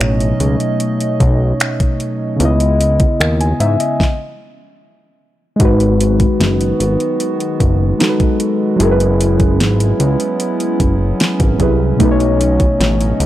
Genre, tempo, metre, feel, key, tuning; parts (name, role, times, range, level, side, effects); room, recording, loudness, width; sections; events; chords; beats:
contemporary R&B; 75 BPM; 4/4; straight; A4 = 442 Hz
muted felt-like synth keys; accompaniment; 0.0-13.3 s; B2 to G#5; -16 LUFS; equal; chorus
hollow soft pad; sustained chords; 0.0-13.3 s; D#3 to D#5; -22 LUFS; right 2 dB; chorus, sidechain pumping
fat analog bass; bass; 0.0-13.3 s; F#1 to G#2; -15 LUFS; equal
smooth R&B drum kit; drums; 0.0-13.3 s; finger snaps, hi-hat, kick drum, snare drum; -16 LUFS; equal
little or no reverb; dry, gritty hardware recording, transformer saturation; -12 LUFS; side -14 dB against mid
0.0-5.6 A section; 5.6-13.3 B section
stop 4.0-5.6
0.0 B9; 2.4 C#m9; 5.6 G#m7; 8.8 F#9sus4; 12.0 B9
0.00 0.80 1.60 | 2.40 3.20 4.00 4.80 | 5.60 6.40 7.20 8.00 | 8.80 9.60 10.40 11.20 | 12.00 12.80